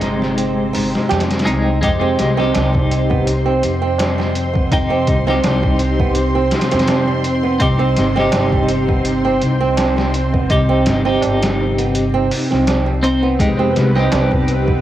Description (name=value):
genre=trip hop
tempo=83 BPM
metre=4/4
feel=swing 55% on 16ths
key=unclear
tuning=A4 = 440 Hz
part: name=twelve-string electric guitar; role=accompaniment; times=0.0-14.8 s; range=Ab3 to C5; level=-21 LUFS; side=left 1 dB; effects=tremolo, tape echo
part: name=string machine, cellos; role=sustained chords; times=0.0-14.8 s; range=C4 to C6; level=-20 LUFS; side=left 1 dB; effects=ensemble chorus
part: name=flamenco guitar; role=arpeggios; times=0.0-14.8 s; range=G3 to G4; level=-21 LUFS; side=right 6 dB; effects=tape echo
part: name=upright bass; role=bass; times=0.0-14.8 s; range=G1 to F2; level=-20 LUFS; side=equal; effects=none
part: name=trip hop sampler-style drum kit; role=drums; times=0.0-14.8 s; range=hi-hat, kick drum, snare drum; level=-20 LUFS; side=equal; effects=overdrive, cassette tape
part: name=tabla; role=percussion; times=1.1-14.3 s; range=none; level=-29 LUFS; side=right 6 dB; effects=none
room=small room reverb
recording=home recording on cassette, vinyl crackle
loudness=-14 LUFS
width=side -12 dB against mid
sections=0.0-1.8 A section; 1.8-14.8 B section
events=none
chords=0.0 Fm7; 7.6 Cm; 13.4 Fm7